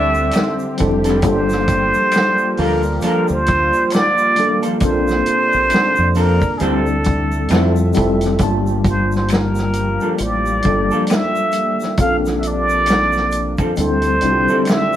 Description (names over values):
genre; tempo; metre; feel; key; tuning
R&B, neo-soul; 67 BPM; 4/4; swing 59% on 16ths; G dorian; A4 = 439 Hz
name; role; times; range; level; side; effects
trumpet with plunger mute; melody; 0.0-15.0 s; Ab4 to F5; -18 LUFS; right 1 dB; none
tine electric piano; accompaniment; 0.0-15.0 s; G3 to A5; -20 LUFS; left 1 dB; overdrive, fast stereo tremolo
warm analog pad; sustained chords; 0.0-15.0 s; C3 to E5; -26 LUFS; right 1 dB; chorus
bright saxophone section; stabs; 0.0-0.6 s; D3 to D4; -27 LUFS; left 4 dB; none
deep dub fingered electric bass; bass; 0.0-14.5 s; F1 to F2; -21 LUFS; equal; none
tube shaker and finger snaps; percussion; 0.1-15.0 s; none; -35 LUFS; left 3 dB; none
warm soul drum kit; drums; 0.3-14.9 s; hi-hat, kick drum, snare drum; -20 LUFS; equal; none
vintage hollow-body jazz guitar; second line; 1.1-14.6 s; F3 to A4; -21 LUFS; equal; none
room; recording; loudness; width
moderate studio reverb, RT60 0.9 s; band playing live in one room, vinyl crackle; -14 LUFS; side -11 dB against mid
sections
0.0-8.4 A section; 8.4-15.0 B section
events
none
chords
0.0 D7sus4; 1.2 Gm9; 4.8 Bbmaj9; 6.6 D7sus4; 7.5 Fmaj7; 8.4 Gm9; 12.0 Bbmaj9; 13.8 D7sus4